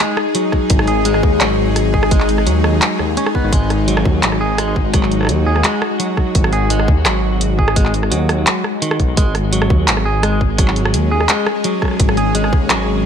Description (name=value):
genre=half-time drum and bass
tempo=170 BPM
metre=4/4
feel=half-time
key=unclear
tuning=A4 = 439 Hz
part: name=bowed-like drone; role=sustained chords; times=0.0-13.1 s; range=G#3 to G#4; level=-20 LUFS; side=left 4 dB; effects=built-in reverb, sidechain pumping
part: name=clean electric guitar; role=arpeggios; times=0.0-13.1 s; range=D#3 to G#4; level=-20 LUFS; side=right 2 dB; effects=vintage 12-bit sampler grit, ping-pong delay
part: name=drum and bass drum kit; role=drums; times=0.2-12.8 s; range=handclaps, hi-hat, rim click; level=-19 LUFS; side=right 1 dB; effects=none
part: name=electronic kick drum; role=drums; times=0.5-12.6 s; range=none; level=-15 LUFS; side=equal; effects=none
part: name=dark detuned saw bass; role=bass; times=0.7-13.1 s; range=G#1 to D#2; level=-18 LUFS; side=equal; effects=tube saturation
room=light reverb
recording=none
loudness=-13 LUFS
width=side -8 dB against mid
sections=0.0-13.1 A section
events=none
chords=0.0 G#5